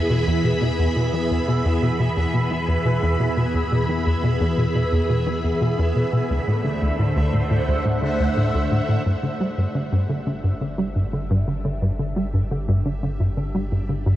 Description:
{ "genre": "ambient, sequencer-driven space music", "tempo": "87 BPM", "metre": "4/4", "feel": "straight", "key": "E major", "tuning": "A4 = 440 Hz", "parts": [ { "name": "phased string machine", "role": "sustained chords", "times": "0.0-14.2 s", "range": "D3 to B5", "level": "-25 LUFS", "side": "equal", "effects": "ensemble chorus, phaser" }, { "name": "tight sequencer bass", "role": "riff", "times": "0.0-14.2 s", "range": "D2 to G3", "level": "-21 LUFS", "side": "equal", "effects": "ensemble chorus, tape echo" }, { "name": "analog drone", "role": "bass", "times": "0.0-14.2 s", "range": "G1 to E2", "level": "-30 LUFS", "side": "equal", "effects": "chorus" }, { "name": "bubbling stepped-filter texture", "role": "texture", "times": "0.0-14.2 s", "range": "E5", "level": "-34 LUFS", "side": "right 1 dB", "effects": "chorus, built-in reverb" } ], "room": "wet huge ambient reverb, RT60 7.7 s", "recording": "worn, warbling old tape, cassette tape, warbly pitch drift", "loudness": "-19 LUFS", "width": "side -13 dB against mid", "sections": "0.0-9.1 A section; 9.1-14.2 B section", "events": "none", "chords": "0.0 E; 6.3 D7; 9.1 G5" }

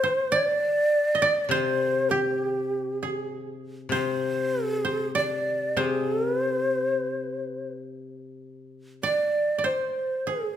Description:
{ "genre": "japanese traditional, Japanese chamber music", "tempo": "45-51 BPM", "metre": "4/4", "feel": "rubato", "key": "unclear", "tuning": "A4 = 441 Hz", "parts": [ { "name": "breathy mellow shakuhachi", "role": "melody", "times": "0.0-10.6 s", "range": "G4 to D5", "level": "-25 LUFS", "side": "equal", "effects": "none" }, { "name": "koto", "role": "second line", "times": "0.0-10.6 s", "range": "G4 to Eb5", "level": "-28 LUFS", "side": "right 3 dB", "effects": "none" }, { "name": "koto", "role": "accompaniment", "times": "0.0-9.1 s", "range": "C3 to Ab3", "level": "-31 LUFS", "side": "left 4 dB", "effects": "none" } ], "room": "moderate recital hall reverb, RT60 1.5 s", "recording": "minimal, uncompressed stereo recording", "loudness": "-23 LUFS", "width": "side -10 dB against mid", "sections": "0.0-9.0 A section; 9.0-10.6 B section", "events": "none", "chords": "none" }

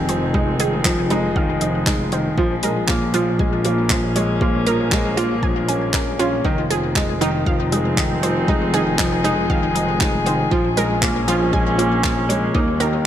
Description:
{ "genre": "piano and strings electronica", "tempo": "118 BPM", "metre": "4/4", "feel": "straight", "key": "F minor", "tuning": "A4 = 440 Hz", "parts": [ { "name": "dark string quartet", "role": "sustained chords", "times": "0.0-13.1 s", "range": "F3 to Ab4", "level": "-25 LUFS", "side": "equal", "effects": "none" }, { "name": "warm upright piano", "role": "riff", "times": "0.0-13.1 s", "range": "Eb3 to Db4", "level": "-20 LUFS", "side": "left 1 dB", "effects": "ping-pong delay" }, { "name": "clear studio double bass section", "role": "bass", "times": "0.0-13.1 s", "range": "F1 to Eb2", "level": "-25 LUFS", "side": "equal", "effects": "sidechain pumping" }, { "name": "wide unison pluck", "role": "arpeggios", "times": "0.1-12.9 s", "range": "Eb4 to Ab5", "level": "-25 LUFS", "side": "right 4 dB", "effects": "sidechain pumping, ping-pong delay" }, { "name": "deep house drum kit", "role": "drums", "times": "0.1-12.9 s", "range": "handclaps, hi-hat", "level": "-23 LUFS", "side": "equal", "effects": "overdrive" }, { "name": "electronic kick drum", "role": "drums", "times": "0.3-12.6 s", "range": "none", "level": "-22 LUFS", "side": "equal", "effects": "none" } ], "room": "light reverb", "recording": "none", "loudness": "-16 LUFS", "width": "side -10 dB against mid", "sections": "0.0-13.1 A section", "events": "none", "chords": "0.0 Fm7; 2.4 Bbm7; 6.4 Fm7; 10.5 Bbm7; 12.5 Eb" }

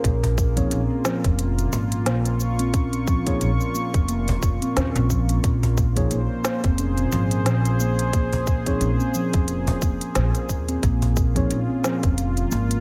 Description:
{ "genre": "organic downtempo", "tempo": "89 BPM", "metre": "4/4", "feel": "swing 57% on 16ths", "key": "Bb minor", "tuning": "A4 = 441 Hz", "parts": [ { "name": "warm analog pad", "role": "sustained chords", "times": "0.0-12.8 s", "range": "Bb2 to Db6", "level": "-31 LUFS", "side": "equal", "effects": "chorus, vintage 12-bit sampler grit, sidechain pumping" }, { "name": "steel tongue drum", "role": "arpeggios", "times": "0.0-12.7 s", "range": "F3 to Db4", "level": "-29 LUFS", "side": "equal", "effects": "delay" }, { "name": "upright bass", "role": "bass", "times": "0.0-12.8 s", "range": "F1 to Eb2", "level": "-26 LUFS", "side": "equal", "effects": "sidechain pumping" }, { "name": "electronic kick drum", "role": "drums", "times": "0.0-12.2 s", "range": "none", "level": "-24 LUFS", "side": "equal", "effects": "none" }, { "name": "organic electronic drum kit", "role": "drums", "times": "0.0-12.8 s", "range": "hi-hat, shaker, snare drum", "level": "-31 LUFS", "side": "equal", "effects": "none" }, { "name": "cajon", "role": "percussion", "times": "0.2-12.7 s", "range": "none", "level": "-31 LUFS", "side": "equal", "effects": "none" }, { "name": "mellow tine electric piano", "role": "accompaniment", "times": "0.6-11.6 s", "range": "F3 to Db5", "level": "-33 LUFS", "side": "equal", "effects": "vintage 12-bit sampler grit, sidechain pumping, delay" } ], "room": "digital ambience", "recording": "none", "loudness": "-22 LUFS", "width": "mono", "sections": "0.0-12.8 A section", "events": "none", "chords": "0.0 Bbm7" }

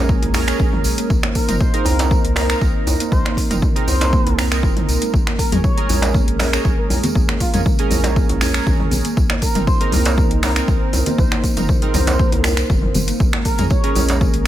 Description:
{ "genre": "afro house", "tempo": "119 BPM", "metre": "4/4", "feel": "straight", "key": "unclear", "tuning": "A4 = 439 Hz", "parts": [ { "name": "dark analog pad", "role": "sustained chords", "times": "0.0-14.5 s", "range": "Ab3 to C5", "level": "-28 LUFS", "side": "left 1 dB", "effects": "chorus, sidechain pumping" }, { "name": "warm analog keys", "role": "stabs", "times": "0.0-14.4 s", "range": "C4 to Bb4", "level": "-25 LUFS", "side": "right 5 dB", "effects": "chorus, sidechain pumping, dub echo" }, { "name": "round analog bass", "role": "bass", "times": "0.0-14.5 s", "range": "Gb1 to F2", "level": "-21 LUFS", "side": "equal", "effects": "sidechain pumping" }, { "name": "kalimba", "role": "arpeggios", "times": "0.1-14.3 s", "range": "Ab3 to Bb4", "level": "-26 LUFS", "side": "right 1 dB", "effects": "sidechain pumping, dub echo" }, { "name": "electronic kick drum", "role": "drums", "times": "0.1-14.3 s", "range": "none", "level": "-18 LUFS", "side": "equal", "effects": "overdrive" }, { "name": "tambourine", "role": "percussion", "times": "0.1-14.3 s", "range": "none", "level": "-31 LUFS", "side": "right 3 dB", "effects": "none" }, { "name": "deep house drum kit", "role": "drums", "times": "0.2-14.4 s", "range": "finger snaps, hi-hat, toms", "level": "-24 LUFS", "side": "equal", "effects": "overdrive" }, { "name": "djembe", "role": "percussion", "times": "0.2-14.2 s", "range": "none", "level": "-26 LUFS", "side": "right 2 dB", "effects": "none" }, { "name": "expressive synth lead", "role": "melody", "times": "1.4-14.2 s", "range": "F4 to Db5", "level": "-27 LUFS", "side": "equal", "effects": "wide subtle chorus, dub echo" }, { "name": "congas", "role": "percussion", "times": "5.1-14.3 s", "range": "none", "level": "-26 LUFS", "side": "left 2 dB", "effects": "none" } ], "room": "small room ambience", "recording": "none", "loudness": "-15 LUFS", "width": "side -12 dB against mid", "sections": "0.0-14.5 A section", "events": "none", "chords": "0.0 Bbm7; 1.1 Cm7; 5.1 Bbm7; 9.2 Cm7; 13.2 Bbm7" }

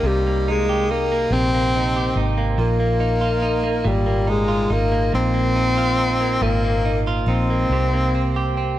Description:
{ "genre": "six-eight pop ballad", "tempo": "47 BPM (dotted quarters)", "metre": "6/8", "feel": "straight", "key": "unclear", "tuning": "A4 = 438 Hz", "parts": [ { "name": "clear tenor saxophone", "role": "melody", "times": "0.0-8.5 s", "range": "G3 to C4", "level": "-21 LUFS", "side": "left 2 dB", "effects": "tape echo" }, { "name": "direct-recorded clean electric guitar", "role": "accompaniment", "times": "0.0-8.8 s", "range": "Bb2 to G4", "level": "-24 LUFS", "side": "right 4 dB", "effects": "wide subtle chorus" }, { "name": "vintage muted fingered electric bass", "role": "bass", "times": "0.0-8.8 s", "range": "Ab1 to C2", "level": "-22 LUFS", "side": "equal", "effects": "none" } ], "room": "light reverb, studio ambience", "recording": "none", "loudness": "-17 LUFS", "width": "side -13 dB against mid", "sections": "0.0-8.8 A section", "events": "none", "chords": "0.0 Cm7; 2.6 Bbsus4; 7.7 Cm7" }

